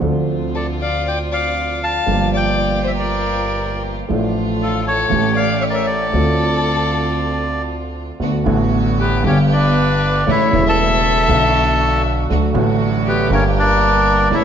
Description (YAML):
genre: tango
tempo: 118 BPM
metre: 4/4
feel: rubato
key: D minor, D major from 8.2 s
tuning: A4 = 441 Hz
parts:
  - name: warm baby grand piano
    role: accompaniment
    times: 0.0-14.4 s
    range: E1 to A4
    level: -19 LUFS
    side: right 1 dB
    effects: none
  - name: rich chamber string section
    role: stabs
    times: 0.0-14.4 s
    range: A3 to G4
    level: -26 LUFS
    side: right 2 dB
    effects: analog delay
  - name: upright bass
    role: bass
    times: 0.0-14.4 s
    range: E1 to D2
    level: -21 LUFS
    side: right 1 dB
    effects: none
  - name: bandoneon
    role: melody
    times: 0.6-14.4 s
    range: B3 to A5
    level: -19 LUFS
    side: equal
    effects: none
  - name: warm violin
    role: second line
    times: 0.6-14.4 s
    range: F4 to F5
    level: -22 LUFS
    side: left 5 dB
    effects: none
room: wet recital hall reverb, RT60 1.6 s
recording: nothing above 7.9 kHz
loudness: -14 LUFS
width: side -8 dB against mid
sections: 0.0-8.2 A section; 8.2-14.4 B section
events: none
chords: 0.0 Dm7; 2.1 Gm7; 4.1 Dm/A; 5.1 A7; 6.1 Dm7; 8.2 D6; 9.2 G; 10.3 A; 11.3 Bm; 12.3 D; 13.3 Gm